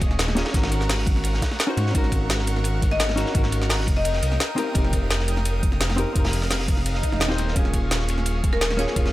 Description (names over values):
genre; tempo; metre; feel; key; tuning
liquid drum and bass; 171 BPM; 4/4; straight; unclear; A4 = 440 Hz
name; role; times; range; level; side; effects
lush unison pad; sustained chords; 0.0-9.1 s; Ab4 to Eb6; -33 LUFS; right 1 dB; chorus, sidechain pumping
dark detuned saw bass; bass; 0.0-9.1 s; Eb1 to Ab2; -24 LUFS; equal; none
crunchy breakbeat drum kit; drums; 0.0-9.1 s; hi-hat, ride cymbal, snare drum; -32 LUFS; equal; high-pass filter on cymbals, studio reverb, high-pass filter on hats, high-pass filter on snare, high-pass filter on room
electronic kick drum; drums; 0.0-9.0 s; none; -23 LUFS; equal; overdrive, studio reverb
garage drum kit; drums; 0.0-9.1 s; hi-hat, snare drum; -27 LUFS; equal; overdrive, studio reverb
hollow-body jazz guitar; accompaniment; 0.4-9.1 s; Bb3 to C5; -28 LUFS; equal; dub echo
marimba with hard mallets; melody; 2.9-4.3, 8.5-9.0 s; Bb4 to Eb5; -28 LUFS; left 3 dB; dub echo
swell; sound effects; 7.0-7.6 s; none; -31 LUFS; right 2 dB; none
room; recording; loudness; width
studio ambience; none; -20 LUFS; side -16 dB against mid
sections
0.0-9.1 A section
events
swell 7.0-7.6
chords
0.0 Eb9sus4; 0.5 Ab9sus4; 3.9 F9sus4; 7.6 Eb9sus4